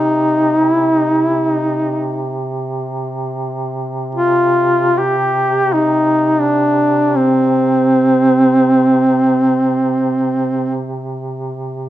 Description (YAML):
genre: caucasian folk, Caucasian lament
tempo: free time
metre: none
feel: none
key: C minor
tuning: A4 = 441 Hz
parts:
  - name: warm duduk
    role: melody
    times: 0.0-10.8 s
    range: C4 to G4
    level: -12 LUFS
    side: equal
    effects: none
  - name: mellow duduk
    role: drone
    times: 0.0-11.9 s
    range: C3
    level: -21 LUFS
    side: right 1 dB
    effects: none
room: moderate recital hall reverb, RT60 1.4 s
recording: minimal, uncompressed stereo recording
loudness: -12 LUFS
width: side -13 dB against mid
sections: 0.0-11.9 A section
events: none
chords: none